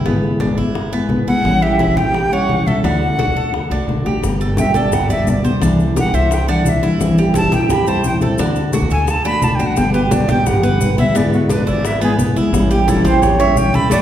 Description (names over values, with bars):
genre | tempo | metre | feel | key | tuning
latin, Cuban son and guajira | 173 BPM | 4/4 | straight | G major | A4 = 442 Hz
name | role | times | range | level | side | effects
fingerpicked steel-string acoustic guitar | accompaniment | 0.0-14.0 s | B2 to G#4 | -17 LUFS | left 1 dB | none
Cuban tres | arpeggios | 0.0-14.0 s | A3 to D5 | -21 LUFS | right 4 dB | none
upright bass | bass | 0.1-14.0 s | G1 to D2 | -22 LUFS | equal | none
bongos | percussion | 0.1-14.0 s | none | -28 LUFS | left 5 dB | none
congas | percussion | 0.1-14.0 s | none | -21 LUFS | equal | none
breathy bright jazz flute | melody | 1.3-14.0 s | F#4 to B5 | -20 LUFS | equal | none
maracas | percussion | 4.2-14.0 s | none | -34 LUFS | left 6 dB | none
room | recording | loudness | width
wet recital hall reverb, RT60 1.6 s | heard from further back in the room | -13 LUFS | side -11 dB against mid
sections
0.0-4.2 A section; 4.2-14.0 B section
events
flute solo 4.2-14.0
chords
0.1 E7/G#; 1.4 A7; 2.8 D; 4.2 Gadd9; 5.6 Cadd9; 7.0 Am7; 8.4 D; 9.8 G; 11.2 E7/G#; 12.5 A7